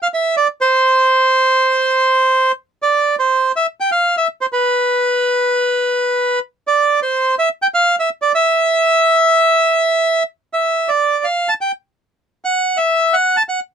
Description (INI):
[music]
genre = tango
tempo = 124 BPM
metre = 4/4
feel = rubato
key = unclear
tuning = A4 = 439 Hz
[part]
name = bandoneon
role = solo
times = 0.0-13.6 s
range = B4 to A5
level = -13 LUFS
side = right 1 dB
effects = none
[sound]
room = little or no reverb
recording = close, detailed microphones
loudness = -13 LUFS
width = side -7 dB against mid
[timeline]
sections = 0.0-2.8 A section; 2.8-13.7 B section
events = none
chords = none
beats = 0.37 | 0.85 1.33 1.82 2.31 | 2.80 3.29 3.78 4.26 | 4.75 5.23 5.71 6.18 | 6.66 7.13 7.61 8.08 | 8.56 9.04 9.52 10.01 | 10.51 10.99 11.48 11.96 | 12.44 12.92 13.39